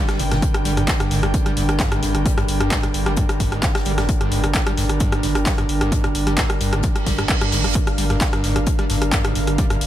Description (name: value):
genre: driving peak-time techno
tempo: 131 BPM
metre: 4/4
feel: straight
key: G phrygian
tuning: A4 = 440 Hz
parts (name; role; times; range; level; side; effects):
- screaming distorted acid line; riff; 0.0-9.8 s; G2 to G3; -27 LUFS; equal; distortion, lush chorus, sidechain pumping, digital delay
- metallic inharmonic drone; drone; 0.1-9.9 s; G2 to D3; -28 LUFS; right 2 dB; chorus, built-in reverb, sidechain pumping
- airy breathy pad; texture; 0.0-9.9 s; D4 to G5; -26 LUFS; right 2 dB; chorus, sidechain pumping
- punchy analog drum machine; drums; 0.1-9.9 s; handclaps, hi-hat, rim click; -24 LUFS; left 1 dB; none
- unplugged drum kit; drums; 0.1-9.9 s; hi-hat, snare drum; -34 LUFS; left 3 dB; high-pass filter on hats, high-pass filter on snare, high-pass filter on room
- saturated sub bass; bass; 0.2-9.9 s; G1; -24 LUFS; equal; tube saturation, sidechain pumping, low-pass filter
- electronic kick drum; drums; 0.4-9.7 s; none; -21 LUFS; equal; none
- reverse cymbal; sound effects; 7.0-7.8 s; none; -27 LUFS; right 6 dB; none
room: little or no reverb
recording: none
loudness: -17 LUFS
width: side -12 dB against mid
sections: 0.0-9.9 A section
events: reverse cymbal 7.0-7.8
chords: 0.0 Gm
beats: | 0.42 0.88 1.34 1.80 | 2.26 2.71 3.17 3.63 | 4.09 4.55 5.00 5.46 | 5.92 6.38 6.84 7.29 | 7.75 8.21 8.67 9.13 | 9.58